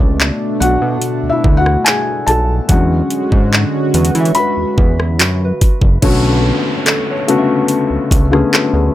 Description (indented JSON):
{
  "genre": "contemporary R&B",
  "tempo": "72 BPM",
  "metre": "4/4",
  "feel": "straight",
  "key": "B dorian",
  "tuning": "A4 = 439 Hz",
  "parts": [
    { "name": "felt-muted upright piano", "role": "accompaniment", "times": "0.0-8.9 s", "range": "C#3 to B5", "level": "-16 LUFS", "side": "left 3 dB", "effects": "none" },
    { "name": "warm analog pad", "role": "sustained chords", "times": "0.0-6.0 s", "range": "B2 to F#4", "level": "-20 LUFS", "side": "right 1 dB", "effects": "chorus, sidechain pumping" },
    { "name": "fat analog bass", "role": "bass", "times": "0.0-8.9 s", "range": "F#1 to E3", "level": "-15 LUFS", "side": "equal", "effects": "none" },
    { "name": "smooth R&B drum kit", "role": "drums", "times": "0.2-8.7 s", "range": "crash cymbal, handclaps, hi-hat, kick drum, rim click", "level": "-14 LUFS", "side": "equal", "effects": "none" },
    { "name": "soft synth bell", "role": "texture", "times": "3.9-8.9 s", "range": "F#4 to E5", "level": "-25 LUFS", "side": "right 2 dB", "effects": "chorus, tape echo" },
    { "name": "downlifter", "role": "sound effects", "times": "6.0-8.9 s", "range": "none", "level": "-24 LUFS", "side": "right 1 dB", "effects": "none" }
  ],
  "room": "little or no reverb",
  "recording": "none",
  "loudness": "-11 LUFS",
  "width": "side -14 dB against mid",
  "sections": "0.0-6.0 A section; 6.0-8.9 B section",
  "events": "felt piano solo 0.0-6.0",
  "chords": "0.0 Bm9; 2.7 E13; 6.0 Bm9"
}